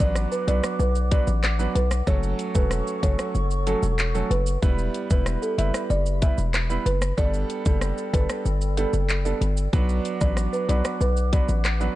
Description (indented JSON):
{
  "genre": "dancehall",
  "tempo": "94 BPM",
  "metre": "4/4",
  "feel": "straight",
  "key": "B minor",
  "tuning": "A4 = 441 Hz",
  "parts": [
    { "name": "folk marimba with medium mallets", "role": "melody", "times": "0.0-11.4 s", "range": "A4 to E5", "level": "-30 LUFS", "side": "right 1 dB", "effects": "ping-pong delay" },
    { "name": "clear grand piano", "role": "accompaniment", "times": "0.0-12.0 s", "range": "F#3 to B4", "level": "-30 LUFS", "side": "right 5 dB", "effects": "none" },
    { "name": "mellow hollow small flute group", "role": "sustained chords", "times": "0.0-12.0 s", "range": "G4 to D6", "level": "-34 LUFS", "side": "left 1 dB", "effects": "sidechain pumping" },
    { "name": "hard-hitting 808-style bass", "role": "bass", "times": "0.0-11.9 s", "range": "E1 to B1", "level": "-24 LUFS", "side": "equal", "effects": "none" },
    { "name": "island pop drum kit", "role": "drums", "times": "0.0-12.0 s", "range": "handclaps, hi-hat, kick drum, rim click, shaker", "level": "-25 LUFS", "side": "equal", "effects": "none" }
  ],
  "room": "studio ambience",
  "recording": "dark, warm production, nothing above 10.5 kHz",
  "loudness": "-21 LUFS",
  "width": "side -16 dB against mid",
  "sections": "0.0-12.0 A section",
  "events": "none",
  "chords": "0.0 Bm; 2.1 F#m; 4.6 Em; 7.2 Gadd9; 9.7 Bm"
}